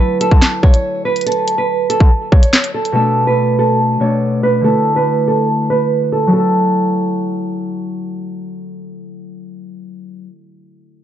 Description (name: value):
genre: hip hop, drill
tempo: 142 BPM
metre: 4/4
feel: half-time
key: F# minor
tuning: A4 = 440 Hz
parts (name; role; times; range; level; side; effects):
- nylon-string guitar; melody; 0.0-7.6 s; A4 to C#5; -16 LUFS; right 3 dB; low-pass filter, digital delay
- Celtic harp; accompaniment; 0.0-10.4 s; B2 to A4; -18 LUFS; left 2 dB; low-pass filter
- drill drum kit; drums; 0.2-2.9 s; handclaps, hi-hat, kick drum, snare drum; -10 LUFS; equal; none
room: little or no reverb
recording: dark, warm production, nothing above 7.9 kHz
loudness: -12 LUFS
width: side -10 dB against mid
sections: 0.0-6.3 A section; 6.3-9.7 B section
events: filter sweep 0.0-6.3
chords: 0.0 F#m7; 3.0 Bm7; 4.6 Dsus2; 6.3 F#m7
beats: 0.00 0.42 0.84 | 1.26 1.69 2.11 2.53 | 2.95 3.38 3.80 4.22 | 4.64 5.07 5.49 5.91 | 6.33 6.76 7.18 7.60 | 8.03 8.45 8.87 9.29